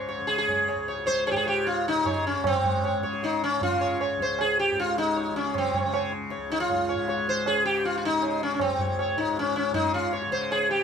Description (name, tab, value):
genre	indian classical, Hindustani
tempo	156 BPM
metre	4/4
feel	straight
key	Db raga yaman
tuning	A4 = 442 Hz
part	sitar	melody	0.0-10.8 s	C4 to Db5	-24 LUFS	left 1 dB	none
part	tanpura	drone	0.0-10.8 s	Db2 to Db3	-34 LUFS	left 1 dB	none
part	tabla	percussion	0.1-10.8 s	none	-30 LUFS	right 4 dB	none
room	moderate studio reverb, RT60 0.9 s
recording	band playing live in one room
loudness	-23 LUFS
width	side -7 dB against mid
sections	0.0-2.4 A section; 2.4-10.8 B section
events	speeding up 0.0-10.8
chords	none